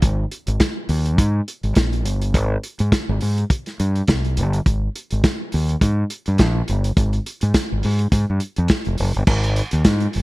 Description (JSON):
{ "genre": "disco", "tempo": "104 BPM", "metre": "4/4", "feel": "swing 56% on 16ths", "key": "unclear", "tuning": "A4 = 437 Hz", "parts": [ { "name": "overdriven fingered electric bass", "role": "bass", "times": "0.0-10.2 s", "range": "F1 to Ab2", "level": "-19 LUFS", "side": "equal", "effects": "none" }, { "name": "warm soul drum kit", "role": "drums", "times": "0.0-10.2 s", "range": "crash cymbal, hi-hat, kick drum, snare drum", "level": "-19 LUFS", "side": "equal", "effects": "gated reverb" } ], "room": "little or no reverb", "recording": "none", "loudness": "-17 LUFS", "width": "side -20 dB against mid", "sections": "0.0-9.3 A section", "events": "none", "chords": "none" }